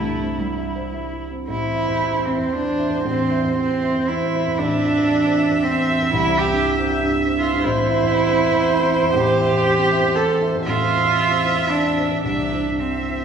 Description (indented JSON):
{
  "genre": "neoclassical piano and strings",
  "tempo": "117 BPM",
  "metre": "3/4",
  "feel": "uneven beats, rubato",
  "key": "A minor",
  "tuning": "A4 = 440 Hz",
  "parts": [
    { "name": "warm cello", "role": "second line", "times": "0.0-13.2 s", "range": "G3 to A4", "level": "-20 LUFS", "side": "right 2 dB", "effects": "none" },
    { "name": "felt-muted upright piano", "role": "accompaniment", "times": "0.0-13.2 s", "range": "A1 to E5", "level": "-23 LUFS", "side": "left 1 dB", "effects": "none" },
    { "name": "rich viola", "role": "accompaniment", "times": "0.0-13.2 s", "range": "E4 to E5", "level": "-24 LUFS", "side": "right 2 dB", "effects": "none" }
  ],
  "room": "wet recital hall reverb, RT60 1.7 s",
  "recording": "recorded in a church or concert hall, small room ambience",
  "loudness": "-17 LUFS",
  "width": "side -7 dB against mid",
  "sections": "0.0-1.5 A section; 1.5-13.2 B section",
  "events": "none",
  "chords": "0.0 C; 1.5 Am; 4.6 Fmaj7/A; 6.1 C; 7.6 Am; 12.2 C"
}